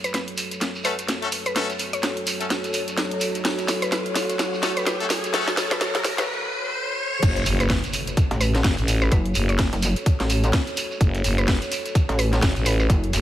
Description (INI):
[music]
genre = bass house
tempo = 127 BPM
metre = 4/4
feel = swing 59% on 16ths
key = F# minor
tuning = A4 = 440 Hz
[part]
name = mallet-like synth pluck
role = melody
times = 0.0-12.9 s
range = B4 to C#5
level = -31 LUFS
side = equal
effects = chorus, tape echo
[part]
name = dark analog pad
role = sustained chords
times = 0.0-13.2 s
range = F#3 to C#5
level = -30 LUFS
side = equal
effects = chorus, sidechain pumping
[part]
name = garage drum kit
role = drums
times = 0.0-13.2 s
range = crash cymbal, hi-hat, snare drum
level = -26 LUFS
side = equal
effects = small room ambience
[part]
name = shekere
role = percussion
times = 0.0-13.2 s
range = none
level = -31 LUFS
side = right 3 dB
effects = none
[part]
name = riser and impact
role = sound effects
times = 1.4-9.1 s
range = none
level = -30 LUFS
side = equal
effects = none
[part]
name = brilliant horn section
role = stabs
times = 0.8-6.2 s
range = A3 to A4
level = -30 LUFS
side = left 4 dB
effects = sidechain pumping, tape echo
[part]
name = growling FM bass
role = bass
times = 7.2-13.2 s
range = F#1 to A1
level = -22 LUFS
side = equal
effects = tube saturation, sidechain pumping
[part]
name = dusty soul sampler-style drum kit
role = drums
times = 7.2-13.2 s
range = hi-hat, snare drum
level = -36 LUFS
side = equal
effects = none
[part]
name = electronic kick drum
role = drums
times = 7.2-13.0 s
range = none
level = -21 LUFS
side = equal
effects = small room ambience
[part]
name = pulsing pluck wobble bass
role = bass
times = 8.3-13.1 s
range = F#1 to A1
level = -21 LUFS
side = equal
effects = chorus, overdrive, sidechain pumping
[sound]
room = light reverb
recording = high-pass filter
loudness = -20 LUFS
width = side -12 dB against mid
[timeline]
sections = 0.0-7.2 A section; 7.2-13.2 B section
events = build-up 0.0-7.2; drum fill 0.0-6.3; riser 1.4-7.2; break 6.3-7.2; drop 7.2-13.2; impact 7.2-9.1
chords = 0.0 F#m